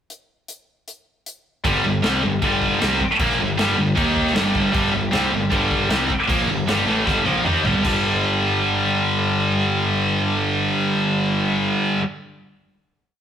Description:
hard rock; 155 BPM; 4/4; straight; G minor; A4 = 442 Hz
gated 80s drum kit; drums; 0.1-7.9 s; crash cymbal, hi-hat, kick drum, snare drum, toms; -25 LUFS; equal
scooped high-gain guitar; riff; 1.6-12.0 s; G2 to Eb4; -18 LUFS; equal; distortion
fuzz picked electric bass; bass; 1.6-12.0 s; G1 to Eb2; -26 LUFS; equal; overdrive
moderate stone room reverb, RT60 1.1 s; rough rehearsal-room recording, warm saturation; -17 LUFS; side -9 dB against mid
0.1-1.6 pickup bar; 1.6-7.8 riff; 7.8-10.9 final chord
drum fill 7.1-7.8
0.1 N.C.; 1.6 Gm; 4.0 Eb5; 4.4 Gm; 7.8 G5
| 0.10 0.48 0.87 1.26 | 1.65 2.04 2.42 2.81 | 3.20 3.58 3.97 4.36 | 4.75 5.13 5.52 5.91 | 6.29 6.68 7.07 7.46 | 7.84 8.23 8.62 9.01 | 9.39 9.78 10.17 10.56

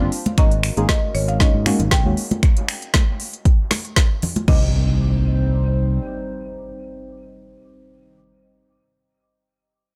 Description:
deep house; 117 BPM; 4/4; swing 54% on 16ths; C minor; A4 = 440 Hz
buzzing marimba with medium hard mallets; melody; 0.0-8.2 s; Db5 to G5; -32 LUFS; equal; dub echo
dark analog pad; sustained chords; 0.0-8.2 s; G3 to C5; -35 LUFS; equal; chorus, phaser, sidechain pumping
deep mellow chord stab; stabs; 0.0-8.2 s; Eb3 to Ab4; -28 LUFS; equal; chorus, phaser, sidechain pumping, dub echo
fingered electric bass; bass; 0.0-6.0 s; G1 to Ab2; -22 LUFS; equal; sidechain pumping
deep house drum kit; drums; 0.1-4.6 s; crash cymbal, finger snaps, hi-hat, snare drum; -26 LUFS; equal; small room ambience
congas; percussion; 0.3-4.5 s; -27 LUFS; equal
electronic kick drum; drums; 0.4-4.6 s; -18 LUFS; equal; small room ambience
impact; sound effects; 4.5-8.2 s; -29 LUFS; equal
digital ambience; -19 LUFS; mono
0.0-4.5 A section; 4.5-8.6 B section
drop 0.0-4.5
0.1 Ab9sus4; 2.2 G9sus4; 4.5 Cm
| 0.38 0.89 1.40 1.92 | 2.43 2.94 3.45 3.97 | 4.48 4.99 5.50 6.02 | 6.53 7.04 7.56 8.07

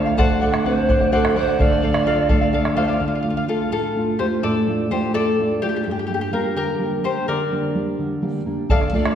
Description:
andean folk, Andean ensemble; 84 BPM (dotted quarters); 6/8; straight; D minor; A4 = 440 Hz
charango; accompaniment; 0.0-9.2 s; F4 to F#5; -22 LUFS; left 2 dB
nylon-string guitar; accompaniment; 0.0-9.2 s; G2 to G5; -22 LUFS; right 1 dB
bombo; percussion; 0.2-2.8, 8.7-9.2 s; -21 LUFS; equal
polished pan flute; melody; 0.4-2.5, 8.7-9.2 s; A4 to F5; -22 LUFS; right 3 dB
wet concert hall reverb, RT60 2.1 s; heard from further back in the room; -18 LUFS; side -9 dB against mid
0.0-3.0 A section; 3.0-8.7 B section
charango solo 3.0-8.7; nylon-string guitar fill 8.0-8.7
0.2 D7; 1.6 Dm; 5.9 Gm
| 0.18 0.89 | 1.59 2.30 | 3.01 3.72 | 4.43 5.14 | 5.86 6.57 | 7.28 7.99 | 8.70

